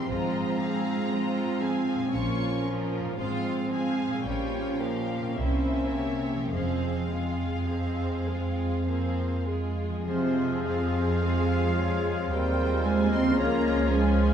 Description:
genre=classical, slow romantic movement for symphony orchestra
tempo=49-60 BPM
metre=3/4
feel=rubato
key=F minor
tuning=A4 = 440 Hz
part: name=rich symphonic violin section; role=melody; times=0.0-14.3 s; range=C5 to Db6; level=-38 LUFS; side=left 2 dB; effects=none
part: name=clear clarinet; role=second line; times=0.0-14.3 s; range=C4 to Db5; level=-34 LUFS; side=equal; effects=none
part: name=warm symphonic violin section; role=second line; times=0.0-14.3 s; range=Db4 to F5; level=-37 LUFS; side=left 2 dB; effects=none
part: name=mellow bassoon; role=accompaniment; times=0.0-14.3 s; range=F3 to C4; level=-37 LUFS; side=right 3 dB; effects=none
part: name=rich symphonic viola section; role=accompaniment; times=0.0-14.3 s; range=F3 to F4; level=-33 LUFS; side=right 1 dB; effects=none
part: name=concert harp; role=arpeggios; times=0.0-14.3 s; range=Ab2 to Db5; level=-37 LUFS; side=left 6 dB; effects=none
part: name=rich symphonic cello section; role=bass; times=0.0-14.3 s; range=F2 to C4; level=-31 LUFS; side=right 2 dB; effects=none
part: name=rich symphonic double bass section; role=bass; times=0.1-14.3 s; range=F1 to F2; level=-30 LUFS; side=right 1 dB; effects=none
part: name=mellow hollow concert flute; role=second line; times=10.1-14.3 s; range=F4 to Eb5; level=-36 LUFS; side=left 2 dB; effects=none
part: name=warm oboe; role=second line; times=10.1-14.3 s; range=F4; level=-37 LUFS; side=equal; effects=none
part: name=dark French horn section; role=sustained chords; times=10.1-14.3 s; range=C3 to C4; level=-33 LUFS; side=left 2 dB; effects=none
part: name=warm trombone section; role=sustained chords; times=10.1-14.3 s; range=C3 to Ab3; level=-37 LUFS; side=right 3 dB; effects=none
part: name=warm trumpet section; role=stabs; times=10.1-14.3 s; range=F4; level=-37 LUFS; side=equal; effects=none
room=moderate scoring stage reverb, RT60 1.5 s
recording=small room ambience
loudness=-25 LUFS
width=side -8 dB against mid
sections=0.0-10.1 A section; 10.1-14.3 A section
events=none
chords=0.1 Fm/Ab; 2.1 Bbm; 3.2 Fm/Ab; 4.3 Gm7b5/Bb; 5.4 C7b9; 6.5 Fm; 13.4 Db

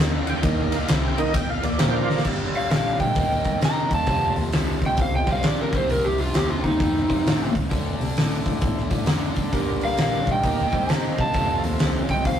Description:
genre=blues rock power trio and southern rock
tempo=132 BPM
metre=4/4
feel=swing 64% on 8ths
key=G minor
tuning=A4 = 441 Hz
part: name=biting overdriven guitar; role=riff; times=0.0-12.4 s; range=F2 to Bb4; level=-29 LUFS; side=equal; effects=spring reverb
part: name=rich double bass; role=bass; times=0.0-12.4 s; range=F1 to C3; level=-28 LUFS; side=equal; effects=none
part: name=bright tonewheel organ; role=sustained chords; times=0.2-2.2, 9.5-12.0 s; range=Eb3 to G5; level=-28 LUFS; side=right 3 dB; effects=chorus vibrato, slow rotary speaker
part: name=oversized low-tuned drum kit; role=drums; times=0.3-12.4 s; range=crash cymbal, hi-hat, kick drum, ride cymbal, snare drum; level=-23 LUFS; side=equal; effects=none
part: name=overdriven slide guitar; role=melody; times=2.6-12.4 s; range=Eb4 to Bb5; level=-24 LUFS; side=equal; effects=none
part: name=biting lead guitar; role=second line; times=2.6-12.4 s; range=C4 to G5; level=-36 LUFS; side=right 2 dB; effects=none
room=moderate stone room reverb, RT60 1.1 s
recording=rough rehearsal-room recording, tube saturation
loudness=-20 LUFS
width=side -9 dB against mid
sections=0.0-2.3 A section; 2.3-12.4 B section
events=tonewheel organ solo 0.0-2.3; drum fill 2.0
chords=0.0 Eb5; 1.8 Bb5; 2.3 Gm; 3.2 Eb; 4.1 F; 5.7 Cm; 7.7 Dm; 9.5 Gm; 10.4 Eb; 11.3 F

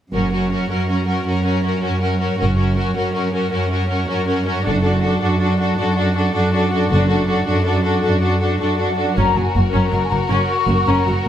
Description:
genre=cinematic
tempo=106 BPM (dotted quarters)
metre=12/8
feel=straight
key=unclear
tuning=A4 = 440 Hz
part: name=rich symphonic violin section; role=melody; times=0.1-11.3 s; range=A4 to Bb4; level=-24 LUFS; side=left 4 dB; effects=none
part: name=rich symphonic violin section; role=second line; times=0.1-11.3 s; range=Gb4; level=-25 LUFS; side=left 1 dB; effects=none
part: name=bright symphonic viola section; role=accompaniment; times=0.1-11.3 s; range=Gb3 to D4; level=-24 LUFS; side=right 2 dB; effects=none
part: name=rich studio double bass section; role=bass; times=0.1-11.2 s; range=Gb1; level=-21 LUFS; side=right 1 dB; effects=none
part: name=rich symphonic cello section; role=bass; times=0.1-11.3 s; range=Gb2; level=-19 LUFS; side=right 1 dB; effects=none
part: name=mellow flute section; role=second line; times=8.6-11.3 s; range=Gb5 to Db6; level=-21 LUFS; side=left 5 dB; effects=none
room=moderate scoring stage reverb, RT60 1.9 s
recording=none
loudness=-16 LUFS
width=side -10 dB against mid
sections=0.1-9.2 A section; 9.2-11.3 B section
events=none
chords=0.1 Gb; 4.7 D/F#; 9.2 Gb

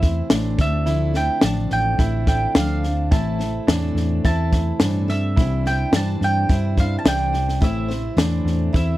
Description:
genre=indie folk with a building arrangement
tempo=107 BPM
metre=4/4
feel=straight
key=unclear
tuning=A4 = 440 Hz
part: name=mandolin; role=melody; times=0.0-9.0 s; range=E5 to A5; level=-26 LUFS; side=right 2 dB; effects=none
part: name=picked steel-string acoustic guitar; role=accompaniment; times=0.0-9.0 s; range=A2 to C5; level=-27 LUFS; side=left 6 dB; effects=none
part: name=mellow brass ensemble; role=sustained chords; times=0.0-9.0 s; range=C3 to D4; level=-35 LUFS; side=left 2 dB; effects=none
part: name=clear upright piano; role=arpeggios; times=0.0-9.0 s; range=D4 to E4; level=-28 LUFS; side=right 7 dB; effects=none
part: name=hollow-body short-scale fingered electric bass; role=bass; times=0.0-9.0 s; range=A1 to G2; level=-22 LUFS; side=equal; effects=none
part: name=compact cocktail drum kit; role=drums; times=0.0-8.9 s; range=kick drum, snare drum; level=-19 LUFS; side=equal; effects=none
room=little or no reverb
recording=dry, close 1970s-style studio recording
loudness=-17 LUFS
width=side -16 dB against mid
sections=0.0-9.0 A section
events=none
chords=0.0 Am; 0.6 Dmadd9; 3.1 Am; 5.4 Cadd9; 7.6 Am

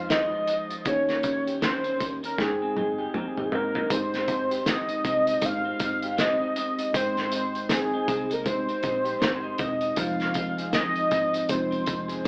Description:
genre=indie pop, bedroom pop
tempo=79 BPM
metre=4/4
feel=swing 60% on 16ths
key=Ab major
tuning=A4 = 441 Hz
part: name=warm velvety synth lead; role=melody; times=0.0-12.3 s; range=G4 to F5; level=-29 LUFS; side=equal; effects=chorus
part: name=electric guitar through a small old amp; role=accompaniment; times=0.0-12.3 s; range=Eb3 to C5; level=-35 LUFS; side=equal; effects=warbly pitch drift
part: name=mellow tine electric piano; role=accompaniment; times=0.0-12.3 s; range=G3 to G5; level=-36 LUFS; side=equal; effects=none
part: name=vintage muted fingered electric bass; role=bass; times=0.0-12.3 s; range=Fb1 to Ab2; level=-48 LUFS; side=equal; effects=none
part: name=cloth-damped thuddy drum kit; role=drums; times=0.1-12.3 s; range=hi-hat, kick drum, snare drum, toms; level=-32 LUFS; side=equal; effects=none
room=moderate studio ambience, RT60 0.5 s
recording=band playing live in one room, AM radio sound, faint mains hum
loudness=-26 LUFS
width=mono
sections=0.0-3.9 A section; 3.9-12.3 A section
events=drum fill 2.4-3.9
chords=0.0 Fm7; 0.9 Eb7; 2.4 Abmaj7; 10.0 Fm7

